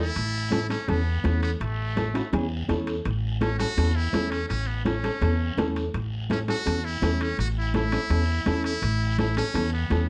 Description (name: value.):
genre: latin, cumbia.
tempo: 166 BPM.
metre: 4/4.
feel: straight.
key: A major.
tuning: A4 = 436 Hz.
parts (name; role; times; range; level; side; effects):
trumpet with metal mute; second line; 0.0-10.1 s; A3 to F#4; -33 LUFS; equal; none.
upright bass; bass; 0.0-10.1 s; A1 to E2; -29 LUFS; equal; none.
congas; percussion; 0.2-10.1 s; none; -35 LUFS; equal; none.
guiro; percussion; 0.2-10.1 s; none; -46 LUFS; equal; none.
timbales; percussion; 0.2-10.1 s; none; -40 LUFS; equal; none.
nylon-string guitar; accompaniment; 0.5-10.1 s; C#4 to A4; -31 LUFS; equal; none.
room: light reverb.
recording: dark, warm production, nothing above 10.8 kHz.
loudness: -26 LUFS.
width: mono.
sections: 0.2-10.1 A section.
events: drum fill 0.0; muted trumpet solo 0.2-10.1.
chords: 0.2 A.